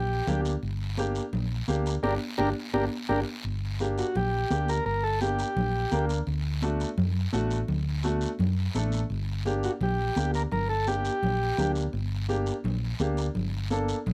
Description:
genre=latin, cumbia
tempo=170 BPM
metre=4/4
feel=straight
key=G harmonic minor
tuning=A4 = 440 Hz
part: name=combo organ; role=melody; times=0.0-6.1, 9.6-11.7 s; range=D4 to Bb4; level=-31 LUFS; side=equal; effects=none
part: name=hollow-body short-scale fingered electric bass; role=bass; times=0.0-14.1 s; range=G1 to F#2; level=-31 LUFS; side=equal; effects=none
part: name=warm upright piano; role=accompaniment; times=0.3-14.0 s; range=A3 to Bb4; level=-34 LUFS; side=equal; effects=none
part: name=congas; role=percussion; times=0.3-14.1 s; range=none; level=-37 LUFS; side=equal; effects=none
part: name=guiro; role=percussion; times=0.3-14.1 s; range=none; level=-45 LUFS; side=equal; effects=none
room=light reverb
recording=close, detailed microphones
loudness=-28 LUFS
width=mono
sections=0.0-3.4 A section; 3.4-14.1 A section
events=band accent 2.0-3.4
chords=0.0 Gm; 6.3 D; 9.1 Gm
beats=0.27 | 0.62 0.97 1.33 1.68 | 2.03 2.39 2.74 3.09 | 3.45 3.80 4.15 4.50 | 4.86 5.21 5.56 5.92 | 6.27 6.62 6.98 7.33 | 7.68 8.04 8.39 8.75 | 9.10 9.46 9.81 10.16 | 10.52 10.87 11.23 11.58 | 11.94 12.29 12.64 13.00 | 13.36 13.71 14.06

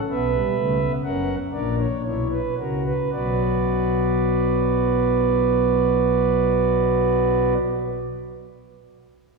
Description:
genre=classical, baroque-style 4-part fugue for pipe organ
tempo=54-66 BPM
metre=4/4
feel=straight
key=B minor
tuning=A4 = 441 Hz
part: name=pipe organ, principal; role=solo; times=0.1-7.6 s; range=F#1 to F#5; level=-19 LUFS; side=right 2 dB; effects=none
room=wet church reverb, RT60 2.6 s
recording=studio ambience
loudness=-19 LUFS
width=side -3 dB against mid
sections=0.0-3.1 A section; 3.1-7.6 B section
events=slowing down 0.0-3.1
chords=0.0 F#7sus4 (rootless); 1.1 F#7; 3.1 Bm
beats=0.13 1.07 2.07 | 3.14 4.26 5.38 6.50

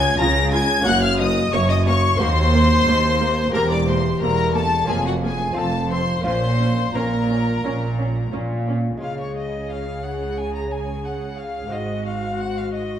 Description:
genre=classical, baroque-style concerto movement with solo episodes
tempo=89 BPM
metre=4/4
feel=straight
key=Bb minor, Db major from 9.0 s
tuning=A4 = 440 Hz
part: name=rich violin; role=melody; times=0.0-13.0 s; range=Gb4 to Bb5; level=-26 LUFS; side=left 2 dB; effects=none
part: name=warm symphonic violin section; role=melody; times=0.0-13.0 s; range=C5 to Bb6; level=-26 LUFS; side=left 5 dB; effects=none
part: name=rich chamber violin section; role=second line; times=0.0-13.0 s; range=Db5 to Bb6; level=-28 LUFS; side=left 2 dB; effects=none
part: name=lute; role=accompaniment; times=0.0-13.0 s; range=Eb2 to G4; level=-29 LUFS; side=left 2 dB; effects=none
part: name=rich chamber cello section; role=bass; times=0.0-13.0 s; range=Eb2 to Db3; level=-24 LUFS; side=right 2 dB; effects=none
part: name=warm chamber double bass section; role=bass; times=0.0-13.0 s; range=E1 to Eb2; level=-24 LUFS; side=right 2 dB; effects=none
part: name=warm symphonic viola section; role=accompaniment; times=0.2-13.0 s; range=Bb3 to Ab4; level=-29 LUFS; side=right 1 dB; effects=none
room=wet recital hall reverb, RT60 1.3 s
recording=dark, warm production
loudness=-18 LUFS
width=side -9 dB against mid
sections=0.0-9.0 A section; 9.0-13.0 B section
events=none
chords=0.0 Db; 0.9 Gb; 2.2 Cm7b5/Eb; 3.5 C7/E; 4.9 Bbm/F; 5.6 F; 6.3 Bbm; 9.0 Db; 11.7 Ab7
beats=0.20 | 0.86 1.53 2.21 2.87 | 3.54 4.22 4.89 5.57 | 6.26 6.95 7.65 8.34 | 9.02 9.71 10.38 11.05 | 11.72 12.40

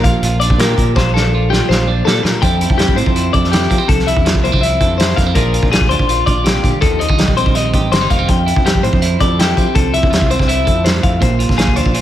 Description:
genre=math rock and midwest emo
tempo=164 BPM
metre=4/4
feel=straight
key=F major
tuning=A4 = 440 Hz
part: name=twelve-string electric guitar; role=accompaniment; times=0.0-12.0 s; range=F2 to A4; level=-18 LUFS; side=right 5 dB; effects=slapback echo
part: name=twelve-string electric guitar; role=arpeggios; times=0.0-12.0 s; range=G4 to G5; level=-18 LUFS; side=left 6 dB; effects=analog delay, slapback echo
part: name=growling fingered electric bass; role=bass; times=0.0-12.0 s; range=F1 to F3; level=-18 LUFS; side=equal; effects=overdrive
part: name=loose indie drum kit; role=drums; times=0.0-12.0 s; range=hi-hat, kick drum, snare drum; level=-15 LUFS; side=equal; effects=none
room=light reverb, small room ambience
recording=none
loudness=-11 LUFS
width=side -12 dB against mid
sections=0.0-2.4 A section; 2.4-12.0 B section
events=drum fill 1.0-2.4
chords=0.0 Bb69; 2.4 Fmaj9; 5.4 Bb9; 6.8 Eb69; 8.3 Fmaj9; 11.2 Bb9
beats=0.23 0.59 | 0.96 1.32 1.69 2.05 | 2.42 2.79 3.15 3.52 | 3.89 4.25 4.62 4.99 | 5.35 5.72 6.08 6.45 | 6.82 7.18 7.55 7.92 | 8.29 8.65 9.02 9.38 | 9.75 10.12 10.48 10.85 | 11.22 11.58 11.95

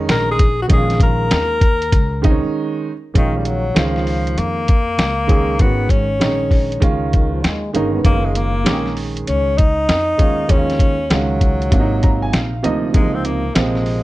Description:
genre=hip hop, jazz-hop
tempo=98 BPM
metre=4/4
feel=swing 66% on 16ths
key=Bb minor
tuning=A4 = 439 Hz
part: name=warm upright piano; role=accompaniment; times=0.0-14.0 s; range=C3 to Bb5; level=-21 LUFS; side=right 4 dB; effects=plate reverb
part: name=upright bass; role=bass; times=0.0-14.0 s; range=Gb1 to F2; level=-22 LUFS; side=equal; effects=none
part: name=breathy alto saxophone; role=melody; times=0.1-14.0 s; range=Eb3 to Bb4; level=-20 LUFS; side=left 2 dB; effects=plate reverb
part: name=lo-fi sampler-style drum kit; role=drums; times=0.1-14.0 s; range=hi-hat, kick drum, snare drum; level=-16 LUFS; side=equal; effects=none
part: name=trombone with bucket mute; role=second line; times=7.1-8.2 s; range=Eb3 to Cb4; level=-27 LUFS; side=left 4 dB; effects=plate reverb, analog delay
room=light reverb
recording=dark, warm production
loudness=-14 LUFS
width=side -17 dB against mid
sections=0.0-3.1 A section; 3.1-14.0 B section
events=alto saxophone solo 0.0-3.1; break 2.5-3.1; upright piano fill 11.7-12.9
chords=0.0 Bbm11; 3.1 Bbm7; 5.6 Ab9sus4; 6.8 Dbadd9; 8.0 Gbmaj9; 10.5 Ebm9; 11.7 Ab13; 12.9 Dbmaj9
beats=0.09 | 0.70 1.31 1.92 2.54 | 3.15 3.76 4.37 4.98 | 5.60 6.21 6.82 7.43 | 8.05 8.66 9.27 9.88 | 10.49 11.11 11.72 12.33 | 12.94 13.56

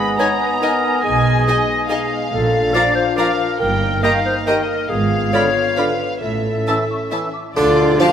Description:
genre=cinematic, playful, whimsical film cue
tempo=139 BPM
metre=3/4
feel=straight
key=D minor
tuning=A4 = 440 Hz
part: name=warm chamber violin section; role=melody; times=0.0-8.1 s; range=D5 to B5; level=-24 LUFS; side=left 3 dB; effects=none
part: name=clear oboe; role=second line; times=0.0-7.3 s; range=D5 to G5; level=-25 LUFS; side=right 2 dB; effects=none
part: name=dark clarinet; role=second line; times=0.0-7.3 s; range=G#4 to Eb5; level=-20 LUFS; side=left 1 dB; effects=none
part: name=mellow small flute group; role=second line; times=0.0-7.4 s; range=G#5 to E6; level=-28 LUFS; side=equal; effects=none
part: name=dark bassoon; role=accompaniment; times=0.0-8.1 s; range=D3 to B3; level=-22 LUFS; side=equal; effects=none
part: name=mellow French horn section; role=sustained chords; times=0.0-7.3 s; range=Bb3 to F4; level=-26 LUFS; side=left 5 dB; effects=none
part: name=dark chamber cello section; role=bass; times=0.0-8.1 s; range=G2 to F4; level=-26 LUFS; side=right 3 dB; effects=none
part: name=warm chamber double bass section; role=bass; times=0.0-7.9 s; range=G1 to D2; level=-25 LUFS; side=right 3 dB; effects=none
part: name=rich studio violin section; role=second line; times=0.2-8.1 s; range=D5 to B5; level=-26 LUFS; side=left 2 dB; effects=none
part: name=warm chamber viola section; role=accompaniment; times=0.2-8.1 s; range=Bb3 to B4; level=-28 LUFS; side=right 1 dB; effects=none
part: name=harpsichord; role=melody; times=7.6-8.1 s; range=D4 to F4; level=-21 LUFS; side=equal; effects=none
part: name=tam-tam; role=percussion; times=7.6-8.1 s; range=none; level=-26 LUFS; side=left 2 dB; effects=none
room=wet concert hall reverb, RT60 2.1 s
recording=none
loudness=-15 LUFS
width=side -8 dB against mid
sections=0.0-7.6 A section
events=band accent 7.6-8.0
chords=0.0 G#m; 1.0 G#m/B; 2.3 Bbmaj7; 3.6 Eb/G; 4.9 G#dim7; 6.2 A; 7.6 Dm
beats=0.20 0.62 | 1.05 1.47 1.90 | 2.33 2.75 3.18 | 3.61 4.04 4.48 | 4.91 5.34 5.78 | 6.22 6.67 7.12 | 7.57 8.00

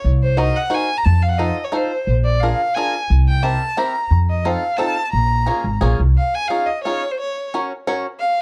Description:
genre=musette waltz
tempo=177 BPM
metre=3/4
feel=straight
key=Bb minor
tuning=A4 = 440 Hz
part: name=rich violin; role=melody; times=0.0-8.4 s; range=C5 to Bb5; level=-23 LUFS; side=equal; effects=none
part: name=upright bass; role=bass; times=0.0-6.1 s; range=Ab1 to F2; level=-18 LUFS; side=equal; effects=tube saturation
part: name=bluegrass banjo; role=accompaniment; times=0.4-8.1 s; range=Bb3 to Db5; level=-25 LUFS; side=equal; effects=none
room=small room ambience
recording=dry, close 1970s-style studio recording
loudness=-19 LUFS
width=mono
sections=0.0-6.2 A section; 6.2-8.4 B section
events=none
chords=0.0 Cm7b5; 1.1 F7; 2.1 Bb7; 3.1 C7; 4.1 F7; 5.1 Bbm7; 6.2 Dbadd9; 7.2 Gb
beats=| 0.05 0.38 0.72 | 1.06 1.40 1.74 | 2.08 2.42 2.77 | 3.10 3.44 3.78 | 4.11 4.45 4.79 | 5.13 5.47 5.81 | 6.16 6.51 6.85 | 7.19 7.54 7.88 | 8.22

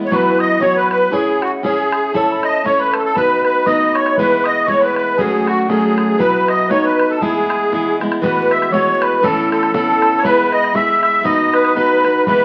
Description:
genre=celtic folk, Celtic polka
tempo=118 BPM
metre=2/4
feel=swing 56% on 8ths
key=E major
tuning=A4 = 440 Hz
part: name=musette accordion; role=melody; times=0.0-12.4 s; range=F#4 to E5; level=-18 LUFS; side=equal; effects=none
part: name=fingerpicked plugged-in steel-string acoustic guitar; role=accompaniment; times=0.0-12.4 s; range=A2 to C#5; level=-21 LUFS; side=equal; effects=none
part: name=mellow hollow wooden whistle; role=second line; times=0.1-12.4 s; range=F#5 to E6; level=-23 LUFS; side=equal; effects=none
part: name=bodhran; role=percussion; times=0.1-12.4 s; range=none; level=-30 LUFS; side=equal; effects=none
room=wet club reverb, RT60 0.7 s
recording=very old 78 rpm record, vinyl crackle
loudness=-15 LUFS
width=mono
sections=0.1-8.2 A section; 8.2-12.4 B section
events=none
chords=0.1 Esus2; 1.1 C#m; 2.1 A/C#; 3.2 B; 4.2 E; 5.2 F#m; 6.2 Bsus4; 6.7 B; 7.2 E; 8.2 Eadd9; 9.2 Aadd9; 10.2 E/G#; 11.3 B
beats=| 0.12 0.62 | 1.13 1.64 | 2.15 2.65 | 3.16 3.67 | 4.17 4.68 | 5.19 5.69 | 6.20 6.71 | 7.21 7.72 | 8.22 8.73 | 9.23 9.74 | 10.24 10.75 | 11.25 11.76 | 12.26

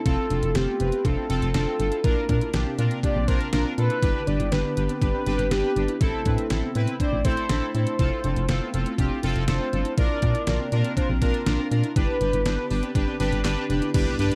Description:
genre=synth-pop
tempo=121 BPM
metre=4/4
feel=straight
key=unclear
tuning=A4 = 440 Hz
part: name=mellow horn-like synth lead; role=melody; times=0.0-13.4 s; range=G4 to D5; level=-31 LUFS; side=equal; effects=chorus
part: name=phased analog pad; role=sustained chords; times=0.0-14.3 s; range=C3 to G4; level=-38 LUFS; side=equal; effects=none
part: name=warbly dusty pluck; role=arpeggios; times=0.0-14.3 s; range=B3 to E4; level=-35 LUFS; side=equal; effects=chorus, tape echo
part: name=analog synth brass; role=accompaniment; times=0.1-14.3 s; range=C4 to C5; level=-32 LUFS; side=equal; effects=chorus
part: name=solid FM bass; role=bass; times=0.1-14.3 s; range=F1 to Bb2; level=-27 LUFS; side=equal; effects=transformer saturation
part: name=detuned 8-bit digital drum machine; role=drums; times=0.1-14.3 s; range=crash cymbal, handclaps, hi-hat, kick drum, snare drum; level=-29 LUFS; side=equal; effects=overdrive
part: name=impact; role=sound effects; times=14.1-14.3 s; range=none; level=-34 LUFS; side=equal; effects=none
room=little or no reverb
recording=dry, gritty hardware recording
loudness=-24 LUFS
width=mono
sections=0.0-13.9 A section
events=impact 13.9-14.3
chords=0.1 Fmaj7; 2.0 Bbadd9; 4.0 G; 6.0 Am; 8.0 Fmaj7; 10.0 Bbadd9; 12.0 G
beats=| 0.06 0.56 1.05 1.55 | 2.04 2.54 3.03 3.53 | 4.03 4.52 5.02 5.51 | 6.01 6.50 7.00 7.50 | 7.99 8.49 8.98 9.48 | 9.98 10.47 10.97 11.46 | 11.96 12.46 12.95 13.45 | 13.94

